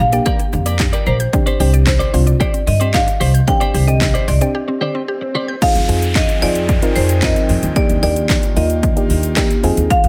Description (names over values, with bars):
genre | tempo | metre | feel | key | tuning
dance-pop | 112 BPM | 4/4 | straight | F dorian | A4 = 445 Hz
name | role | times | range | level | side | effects
marimba with hard mallets | melody | 0.0-10.1 s | C5 to G5 | -23 LUFS | equal | delay
mallet-like synth pluck | arpeggios | 0.0-5.6 s | D3 to G6 | -29 LUFS | equal | chorus, phaser, sidechain pumping, delay
twelve-string electric guitar | riff | 0.0-5.5 s | G4 to D5 | -26 LUFS | equal | subtle chorus
upright bass | bass | 0.0-10.1 s | Bb1 to G2 | -19 LUFS | equal | sidechain pumping
downlifter and swell | sound effects | 4.7-9.9 s | none | -32 LUFS | equal | none
soft round pluck | accompaniment | 0.1-10.1 s | D3 to Bb4 | -24 LUFS | equal | chorus, sidechain pumping
house drum kit | drums | 0.1-10.1 s | crash cymbal, handclaps, hi-hat, kick drum, shaker, snare drum | -20 LUFS | equal | overdrive
tambourine | percussion | 1.9-9.5 s | none | -36 LUFS | equal | none
airy breathy pad | sustained chords | 6.3-10.1 s | Eb3 to G5 | -28 LUFS | equal | chorus, sidechain pumping
room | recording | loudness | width
digital ambience | none | -15 LUFS | mono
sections
0.0-5.6 A section; 5.6-10.1 B section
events
swell 4.7-5.6; break 4.5-5.6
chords
0.0 Bb6; 1.3 Csus2; 5.6 Fm7; 7.8 Ebmaj7